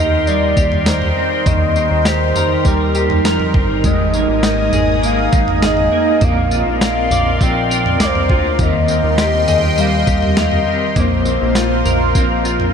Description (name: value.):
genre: dream pop.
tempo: 101 BPM.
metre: 4/4.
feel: straight.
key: Eb major.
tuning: A4 = 440 Hz.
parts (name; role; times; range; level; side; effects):
warbly nostalgic lead; melody; 0.0-12.7 s; Bb4 to G5; -19 LUFS; left 1 dB; chorus, ping-pong delay.
phased analog pad; sustained chords; 0.0-12.7 s; Eb4 to Eb6; -21 LUFS; right 2 dB; phaser, chorus.
semi-hollow electric guitar; arpeggios; 0.0-12.7 s; Eb3 to D5; -20 LUFS; left 4 dB; ensemble chorus, ping-pong delay.
chorused synth bass; bass; 0.0-12.7 s; G1 to F2; -20 LUFS; equal; none.
crisp 8-bit digital drum machine; drums; 0.3-12.7 s; kick drum, snare drum, tambourine, toms; -18 LUFS; right 1 dB; none.
electric guitar at the edge of break-up; accompaniment; 3.8-12.7 s; Eb3 to D5; -23 LUFS; right 2 dB; tremolo, wide subtle chorus.
room: moderate huge ambient reverb, RT60 8.5 s.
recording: dreamy mix soaked in reverb.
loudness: -12 LUFS.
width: side -7 dB against mid.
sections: 0.0-12.7 A section.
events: none.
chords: 0.0 Eb6; 3.8 Absus2; 6.2 Bbadd9; 8.6 Eb6; 11.0 Bbsus2.